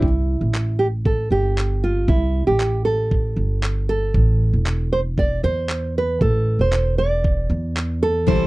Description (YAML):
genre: acoustic pop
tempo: 116 BPM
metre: 4/4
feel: straight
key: C major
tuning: A4 = 441 Hz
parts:
  - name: nylon-string guitar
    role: melody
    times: 0.0-8.5 s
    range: E4 to D5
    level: -22 LUFS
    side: right 2 dB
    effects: none
  - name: picked steel-string acoustic guitar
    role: accompaniment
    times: 0.0, 8.3-8.5 s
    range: C3 to A4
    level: -21 LUFS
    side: left 7 dB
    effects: none
  - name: upright bass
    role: bass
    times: 0.0-8.5 s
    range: E1 to E2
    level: -20 LUFS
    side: equal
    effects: none
  - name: dusty soul sampler-style drum kit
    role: drums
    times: 0.0-8.4 s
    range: handclaps, kick drum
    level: -22 LUFS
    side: equal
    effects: none
  - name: picked steel-string acoustic guitar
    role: arpeggios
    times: 8.3-8.5 s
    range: C5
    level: -21 LUFS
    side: right 7 dB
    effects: none
room: little or no reverb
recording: dry, close 1970s-style studio recording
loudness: -18 LUFS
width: side -20 dB against mid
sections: 0.0-8.5 A section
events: none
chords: 0.0 C6; 4.2 Am